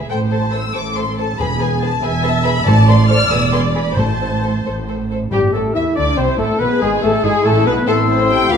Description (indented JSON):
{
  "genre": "quick classical-period movement for symphony orchestra",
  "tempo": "94 BPM (dotted quarters)",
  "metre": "6/8",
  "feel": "straight",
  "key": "A minor",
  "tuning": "A4 = 437 Hz",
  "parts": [
    { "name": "warm studio violin section", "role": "second line", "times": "0.0-8.6 s", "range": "G4 to G5", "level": "-21 LUFS", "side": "left 4 dB", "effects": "none" },
    { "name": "warm studio violin section", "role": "melody", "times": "0.1-8.6 s", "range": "G4 to F6", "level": "-22 LUFS", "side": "left 4 dB", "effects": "none" },
    { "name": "rich studio viola section", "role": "accompaniment", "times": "0.1-8.6 s", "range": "C4 to E5", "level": "-23 LUFS", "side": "equal", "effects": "none" },
    { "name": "rich studio double bass section", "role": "bass", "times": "0.1-8.6 s", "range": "E1 to E2", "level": "-21 LUFS", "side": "right 4 dB", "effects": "none" },
    { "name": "warm studio cello section", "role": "bass", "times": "0.1-8.6 s", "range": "D2 to E3", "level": "-22 LUFS", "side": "right 2 dB", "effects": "none" },
    { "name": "timpani", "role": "percussion", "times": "1.4-5.9 s", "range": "E2 to A2", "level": "-21 LUFS", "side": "equal", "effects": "none" },
    { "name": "mellow clarinet", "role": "second line", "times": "5.3-8.6 s", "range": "G3 to F4", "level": "-23 LUFS", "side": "left 3 dB", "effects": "none" },
    { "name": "silver concert flute", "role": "second line", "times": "5.3-8.6 s", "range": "G4 to E6", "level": "-23 LUFS", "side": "left 5 dB", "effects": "none" },
    { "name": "warm oboe", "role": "second line", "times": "5.3-8.6 s", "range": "G4 to C6", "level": "-24 LUFS", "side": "right 1 dB", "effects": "none" },
    { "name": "mellow bassoon", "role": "accompaniment", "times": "5.3-8.6 s", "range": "G3 to E4", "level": "-23 LUFS", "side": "right 2 dB", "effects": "none" },
    { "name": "mellow French horn section", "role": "sustained chords", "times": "5.3-8.6 s", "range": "G3 to G4", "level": "-22 LUFS", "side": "left 4 dB", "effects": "none" }
  ],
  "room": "wet recital hall reverb, RT60 1.4 s",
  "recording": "dark, warm production",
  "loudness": "-13 LUFS",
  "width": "side -7 dB against mid",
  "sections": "0.0-5.3 A section; 5.3-8.6 A section",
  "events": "none",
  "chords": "0.1 Am; 1.4 E; 2.7 Am; 3.3 E; 4.0 Am; 6.6 E; 7.9 Am"
}